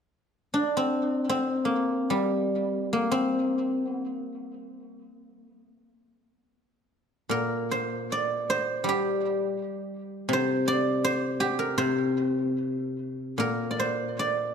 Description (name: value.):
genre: chinese traditional, Chinese solo plucked strings.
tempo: 59-83 BPM.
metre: 2/4.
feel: rubato.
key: unclear.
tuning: A4 = 440 Hz.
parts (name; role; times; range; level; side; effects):
guzheng; solo; 0.5-14.5 s; Bb2 to D5; -25 LUFS; equal; tape echo.
room: moderate recital hall reverb, RT60 1.4 s.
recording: none.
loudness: -25 LUFS.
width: side -6 dB against mid.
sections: 0.0-7.3 A section; 7.3-14.5 B section.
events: none.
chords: none.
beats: 0.77 | 1.72 2.62 | 3.54 4.47 | 5.42 6.40 | 7.31 8.10 | 8.85 9.59 | 10.32 11.06 | 11.81 12.59 | 13.39 14.16.